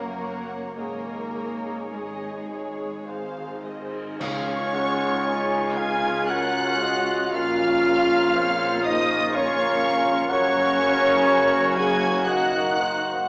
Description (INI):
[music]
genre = classical, slow romantic movement for symphony orchestra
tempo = 51-63 BPM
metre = 3/4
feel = rubato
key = Db major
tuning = A4 = 440 Hz
[part]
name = muted studio violin section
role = melody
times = 0.0-13.3 s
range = Db5 to Ab6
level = -32 LUFS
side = equal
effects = none
[part]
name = muted studio violin section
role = second line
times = 0.0-13.3 s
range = Ab4 to Ab5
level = -34 LUFS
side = equal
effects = none
[part]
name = muted studio viola section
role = accompaniment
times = 0.0-13.3 s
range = Bb3 to Db5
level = -33 LUFS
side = equal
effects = none
[part]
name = concert harp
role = arpeggios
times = 0.0-13.3 s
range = Gb2 to Db6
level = -41 LUFS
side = equal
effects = none
[part]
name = muted studio cello section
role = bass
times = 0.0-13.3 s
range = Gb2 to Bb3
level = -38 LUFS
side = equal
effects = none
[part]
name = muted studio double bass section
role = bass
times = 0.0-13.3 s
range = Gb1 to Gb2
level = -39 LUFS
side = equal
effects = none
[part]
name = cymbal swell, clash cymbals and concert bass drum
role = percussion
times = 0.8-6.3 s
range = none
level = -42 LUFS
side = equal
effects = none
[part]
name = mellow clarinet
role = second line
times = 4.2-13.3 s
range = Db5 to Ab5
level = -32 LUFS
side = equal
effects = none
[part]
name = silver concert flute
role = second line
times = 4.2-13.3 s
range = Db5 to Ab5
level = -28 LUFS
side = equal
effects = none
[part]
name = bright trombone section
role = sustained chords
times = 4.2-13.3 s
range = Db3 to Bb3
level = -34 LUFS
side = equal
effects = none
[part]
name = mellow French horn section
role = sustained chords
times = 4.2-13.2 s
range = Db4 to Ab4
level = -29 LUFS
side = equal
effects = none
[part]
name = warm trumpet section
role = stabs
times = 4.2-13.2 s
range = F4 to Gb4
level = -32 LUFS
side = equal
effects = none
[part]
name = timpani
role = percussion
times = 4.2-5.7 s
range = Db3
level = -42 LUFS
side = equal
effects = none
[sound]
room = wet scoring stage reverb, RT60 1.6 s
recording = small speaker sound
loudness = -23 LUFS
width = mono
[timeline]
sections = 0.0-4.2 A section; 4.2-13.3 B section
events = band accent 4.2-5.3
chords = 0.0 Gb; 0.8 Absus4; 3.1 Ab; 4.2 Db; 7.3 Bbm; 10.3 Gb; 12.3 Ebm/Gb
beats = | 0.77 1.94 3.09 | 4.20 5.25 6.30 | 7.35 8.37 9.35 | 10.30 11.28 12.28